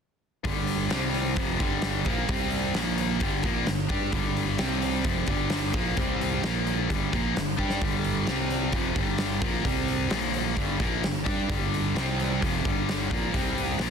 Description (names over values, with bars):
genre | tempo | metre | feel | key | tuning
hard rock | 130 BPM | 4/4 | straight | G minor | A4 = 440 Hz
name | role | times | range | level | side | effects
overdriven electric guitar | riff | 0.4-13.9 s | F2 to G4 | -29 LUFS | left 13 dB | none
growling fingered electric bass | bass | 0.4-13.9 s | F1 to G2 | -32 LUFS | equal | overdrive
huge arena drum kit | drums | 0.4-13.9 s | hi-hat, kick drum, snare drum | -30 LUFS | equal | none
crunchy overdriven guitar | riff | 0.5-13.9 s | F2 to G4 | -30 LUFS | right 12 dB | none
room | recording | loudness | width
studio reverb | dense, heavily limited modern master | -24 LUFS | side -6 dB against mid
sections
0.5-13.9 A section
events
drum fill 7.6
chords
0.5 G5; 0.9 C5; 1.4 Gm; 2.3 C5; 2.8 Bb5; 3.2 Gm; 4.6 C5; 5.1 Gm; 6.0 C5; 6.4 Bb5; 6.9 Gm; 8.3 C5; 8.7 Gm; 9.7 C5; 10.1 Bb5; 10.6 Gm; 12.0 C5; 12.4 Gm; 13.3 C5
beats
| 0.46 0.92 1.38 1.83 | 2.29 2.75 3.21 3.67 | 4.13 4.59 5.05 5.51 | 5.98 6.44 6.90 7.36 | 7.82 8.28 8.74 9.20 | 9.66 10.12 10.58 11.04 | 11.50 11.96 12.42 12.88 | 13.34 13.80